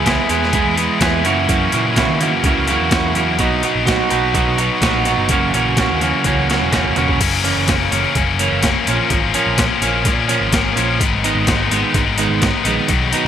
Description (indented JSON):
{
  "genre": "indie rock",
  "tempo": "126 BPM",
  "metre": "4/4",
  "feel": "straight",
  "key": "unclear",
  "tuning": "A4 = 440 Hz",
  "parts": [
    { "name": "overdriven electric guitar", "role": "riff", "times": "0.0-13.3 s", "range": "F#2 to G#4", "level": "-19 LUFS", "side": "right 7 dB", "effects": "lush chorus, digital delay" },
    { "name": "scooped high-gain guitar", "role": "riff", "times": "0.0-13.3 s", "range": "F#2 to E4", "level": "-18 LUFS", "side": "left 7 dB", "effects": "distortion" },
    { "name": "overdriven picked electric bass", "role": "bass", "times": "0.0-13.3 s", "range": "E1 to D#3", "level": "-22 LUFS", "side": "equal", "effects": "none" },
    { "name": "boom bap sampler-style drum kit", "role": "drums", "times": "0.1-13.2 s", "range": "crash cymbal, hi-hat, kick drum, snare drum, toms", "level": "-20 LUFS", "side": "equal", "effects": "overdrive" }
  ],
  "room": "light reverb",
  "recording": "bright 1980s-style digital production",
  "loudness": "-14 LUFS",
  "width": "side -9 dB against mid",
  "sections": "0.0-7.2 A section; 7.2-13.3 B section",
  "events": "drum fill 6.2-7.2",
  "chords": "0.0 E; 1.2 F#7; 3.4 Bmaj7; 5.3 F#7; 8.9 A#m7; 11.0 G#m"
}